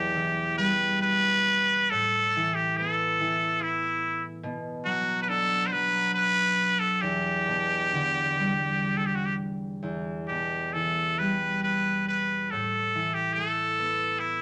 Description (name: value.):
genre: celtic folk, Celtic slow air.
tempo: 61-74 BPM.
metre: 3/4.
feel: rubato.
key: E minor.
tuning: A4 = 438 Hz.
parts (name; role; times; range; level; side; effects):
trumpet with straight mute; melody; 0.0-14.4 s; E4 to C5; -27 LUFS; equal; none.
concert harp; accompaniment; 0.0-14.4 s; E2 to D4; -33 LUFS; equal; none.
room: moderate studio reverb, RT60 0.6 s.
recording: none.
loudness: -26 LUFS.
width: mono.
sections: 0.0-9.8 A section; 9.8-14.4 A section.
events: none.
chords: 0.0 Em; 1.9 Asus2; 4.4 Bm; 7.0 Em7; 9.8 Em; 12.5 Asus2.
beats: 0.14 1.03 | 1.92 2.78 3.61 | 4.44 5.29 6.14 | 7.01 7.91 8.86 | 9.81 10.73 11.64 | 12.51 13.35 14.21.